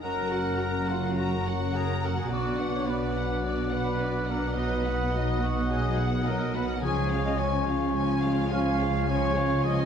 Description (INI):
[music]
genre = cinematic, heroic adventure film score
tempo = 106 BPM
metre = 4/4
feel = straight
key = F# major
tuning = A4 = 438 Hz
[part]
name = warm symphonic violin section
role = melody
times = 0.0-9.9 s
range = D5 to A#5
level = -36 LUFS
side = left 4 dB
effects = none
[part]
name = mellow clarinet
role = second line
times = 0.0-9.9 s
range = E#4 to F#4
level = -37 LUFS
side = left 5 dB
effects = none
[part]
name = mellow hollow concert flute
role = second line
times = 0.0-9.9 s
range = A#5 to D#6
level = -39 LUFS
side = left 2 dB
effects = none
[part]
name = mellow oboe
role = second line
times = 0.0-9.9 s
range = F#5 to G#5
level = -37 LUFS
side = right 3 dB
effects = none
[part]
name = warm symphonic violin section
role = second line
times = 0.0-9.9 s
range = C#4 to B4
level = -41 LUFS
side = left 4 dB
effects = none
[part]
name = warm symphonic viola section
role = accompaniment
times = 0.0-9.9 s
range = E#3 to A#4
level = -36 LUFS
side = right 1 dB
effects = none
[part]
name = mellow French horn section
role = sustained chords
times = 0.0-9.9 s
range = E#3 to D#4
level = -36 LUFS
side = left 3 dB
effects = none
[part]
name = concert harp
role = arpeggios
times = 0.0-9.9 s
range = F#2 to Bb4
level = -36 LUFS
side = left 9 dB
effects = none
[part]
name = clear trumpet section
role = stabs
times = 0.0-9.9 s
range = E#4 to E#5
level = -32 LUFS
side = right 1 dB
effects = none
[part]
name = dark symphonic cello section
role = bass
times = 0.0-9.9 s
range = F#2 to C#3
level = -32 LUFS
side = right 3 dB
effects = none
[part]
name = rich studio double bass section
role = bass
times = 0.0-9.9 s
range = F#1 to C#2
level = -32 LUFS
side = right 2 dB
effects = none
[sound]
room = moderate scoring stage reverb, RT60 1.9 s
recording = none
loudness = -25 LUFS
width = side -8 dB against mid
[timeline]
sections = 0.0-9.9 A section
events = none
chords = 0.0 F#; 2.3 Bm; 4.6 B; 6.8 C#